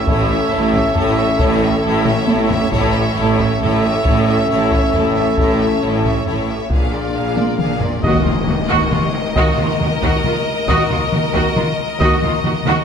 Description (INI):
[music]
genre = cinematic, epic orchestral film score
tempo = 136 BPM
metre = 3/4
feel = straight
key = Eb minor from 8.0 s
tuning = A4 = 442 Hz
[part]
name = clear chamber violin section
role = melody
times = 0.0-12.8 s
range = C#5 to E#5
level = -24 LUFS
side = left 4 dB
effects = none
[part]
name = clear symphonic violin section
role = second line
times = 0.0-12.8 s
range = G#4 to C#5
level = -26 LUFS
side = left 2 dB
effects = none
[part]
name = rich symphonic viola section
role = accompaniment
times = 0.0-12.8 s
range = C#4 to Gb4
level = -24 LUFS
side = right 1 dB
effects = none
[part]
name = dark French horn section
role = sustained chords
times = 0.0-12.2 s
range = Bb3 to A4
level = -22 LUFS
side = left 4 dB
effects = none
[part]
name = mellow trumpet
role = stabs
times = 0.0-12.2 s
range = Eb5 to E#5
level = -23 LUFS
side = right 3 dB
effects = none
[part]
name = clear symphonic double bass section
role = bass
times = 0.0-12.7 s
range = A1 to Eb2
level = -21 LUFS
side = right 2 dB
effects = none
[part]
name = rich symphonic cello section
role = bass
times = 0.0-12.8 s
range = A2 to Eb3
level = -22 LUFS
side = right 2 dB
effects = none
[part]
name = taiko ensemble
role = drums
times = 0.1-12.8 s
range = none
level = -20 LUFS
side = equal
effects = none
[part]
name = tam-tam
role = percussion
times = 8.0-9.8 s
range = none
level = -26 LUFS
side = left 4 dB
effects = none
[part]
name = impact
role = sound effects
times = 8.0-9.4 s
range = none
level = -29 LUFS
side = left 1 dB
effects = none
[sound]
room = moderate scoring stage reverb, RT60 1.6 s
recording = none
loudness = -14 LUFS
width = side -7 dB against mid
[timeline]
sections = 0.0-8.0 A section; 8.0-12.8 B section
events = drum fill 2.1-2.7, 7.4-8.0, 12.7; band accent 8.0-8.5; impact 8.0-9.4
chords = 0.0 A; 6.7 A#7; 8.0 Ebm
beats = | 0.08 0.53 0.97 | 1.41 1.85 2.29 | 2.73 3.17 3.62 | 4.06 4.50 4.94 | 5.38 5.82 6.26 | 6.71 7.15 7.59 | 8.03 8.47 8.91 | 9.36 9.80 10.24 | 10.68 11.12 11.56 | 12.01 12.45